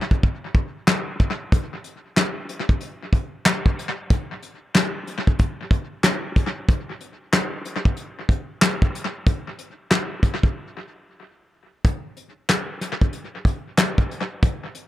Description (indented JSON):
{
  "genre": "hip hop",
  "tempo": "93 BPM",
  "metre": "4/4",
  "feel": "swing 60% on 16ths",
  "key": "none",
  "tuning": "none",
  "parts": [
    { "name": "soft brush drum kit", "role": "drums", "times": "0.1-14.9 s", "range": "handclaps, hi-hat, kick drum, snare drum", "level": "-19 LUFS", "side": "equal", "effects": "tape echo" }
  ],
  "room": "light reverb",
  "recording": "echo-heavy mix",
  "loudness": "-20 LUFS",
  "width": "side -14 dB against mid",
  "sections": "0.0-11.8 A section; 11.8-14.9 B section",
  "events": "break 0.0-1.5, 10.6-11.8",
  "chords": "none"
}